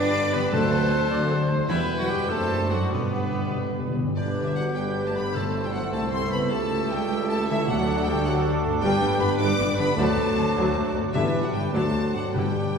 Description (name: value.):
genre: classical, dramatic, fast romantic movement for symphony orchestra.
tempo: 95-107 BPM (dotted quarters).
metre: 6/8.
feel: rubato.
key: G major.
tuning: A4 = 444 Hz.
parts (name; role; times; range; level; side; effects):
rich chamber violin section; melody; 0.0-12.8 s; B4 to D6; -33 LUFS; left 3 dB; none.
mellow cor anglais; second line; 0.0-12.8 s; B3 to D5; -36 LUFS; right 2 dB; none.
silver concert flute; second line; 0.0-12.8 s; D6 to G6; -35 LUFS; equal; none.
warm clarinet; second line; 0.0-12.8 s; B3 to D5; -34 LUFS; left 1 dB; none.
warm symphonic violin section; second line; 0.0-12.8 s; B3 to D6; -35 LUFS; left 2 dB; none.
dark bassoon; accompaniment; 0.0-12.8 s; F#3 to C4; -32 LUFS; equal; none.
rich symphonic viola section; accompaniment; 0.0-12.8 s; D3 to D5; -32 LUFS; right 1 dB; none.
dark French horn section; sustained chords; 0.0-12.8 s; D3 to E4; -30 LUFS; left 1 dB; none.
concert harp; arpeggios; 0.0-12.8 s; E2 to C5; -34 LUFS; left 3 dB; none.
bright trumpet; stabs; 0.0-3.9 s; B4 to C5; -33 LUFS; right 2 dB; none.
rich symphonic cello section; bass; 0.0-12.7 s; C2 to D4; -32 LUFS; right 2 dB; none.
rich symphonic double bass section; bass; 0.0-12.6 s; G1 to G2; -32 LUFS; right 2 dB; none.
warm tuba; bass; 0.0-12.6 s; E1 to D2; -32 LUFS; right 1 dB; none.
timpani; percussion; 0.5-8.2, 11.1-12.8 s; G2 to D3; -32 LUFS; left 2 dB; none.
room: wet scoring stage reverb, RT60 2.0 s.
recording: heard from further back in the room.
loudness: -22 LUFS.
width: side -6 dB against mid.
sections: 0.0-4.2 A section; 4.2-12.8 B section.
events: timpani fill 2.9-4.2.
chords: 0.0 G; 0.5 D7; 1.7 Em; 2.3 D7/F#; 2.9 G; 5.4 Am/G; 6.5 A7/C#; 7.7 D; 8.8 G; 10.0 D7; 11.1 G; 11.7 D7.